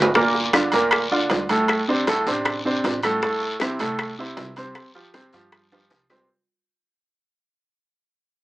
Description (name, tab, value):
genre	Afro-Cuban jazz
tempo	156 BPM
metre	4/4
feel	straight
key	unclear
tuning	A4 = 440 Hz
part	bright upright piano	accompaniment	0.0-6.3 s	A2 to C5	-21 LUFS	right 1 dB	none
part	upright bass	bass	0.0-6.2 s	G1 to G2	-38 LUFS	equal	none
part	timbales	percussion	0.0-6.2 s	none	-25 LUFS	right 2 dB	none
part	guiro	percussion	0.1-6.3 s	none	-31 LUFS	left 2 dB	none
part	bongos	percussion	0.2-6.3 s	none	-27 LUFS	left 3 dB	none
part	congas	percussion	0.2-6.3 s	none	-34 LUFS	left 1 dB	none
part	claves	percussion	0.5-6.3 s	none	-26 LUFS	left 2 dB	none
room	moderate small room ambience, RT60 0.5 s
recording	small speaker sound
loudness	-19 LUFS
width	side -17 dB against mid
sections	0.2-6.3 A section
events	drum fill 0.0, 5.7-6.3; fade-out 0.2-6.3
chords	0.2 Gm9; 1.7 D5; 3.2 Am; 4.8 Csus4